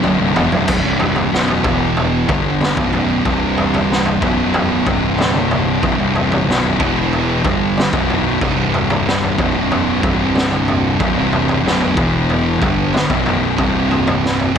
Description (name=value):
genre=stoner and doom metal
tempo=93 BPM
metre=4/4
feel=straight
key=B phrygian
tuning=A4 = 439 Hz
part: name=thick fuzz guitar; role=riff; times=0.0-14.6 s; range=B1 to G3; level=-19 LUFS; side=left 11 dB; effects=distortion
part: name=thick fuzz guitar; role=riff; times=0.0-14.6 s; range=B1 to G3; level=-18 LUFS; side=right 10 dB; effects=distortion
part: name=fuzz fingered electric bass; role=bass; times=0.0-14.6 s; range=B0 to G1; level=-22 LUFS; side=equal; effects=overdrive, tube saturation
part: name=raw garage drum kit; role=drums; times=0.0-14.6 s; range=crash cymbal, kick drum, snare drum, toms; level=-19 LUFS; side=equal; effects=none
room=light reverb, small room ambience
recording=none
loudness=-14 LUFS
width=side -7 dB against mid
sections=0.7-14.6 A section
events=drum fill 0.0-0.7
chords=0.0 B5; 1.6 E5; 2.3 Bm; 3.3 C5; 4.2 B5; 4.9 C5; 5.8 B5; 6.8 E5; 7.4 Bm; 8.4 C5; 9.4 B5; 10.0 C5; 11.0 B5; 12.0 E5; 12.6 Bm; 13.6 C5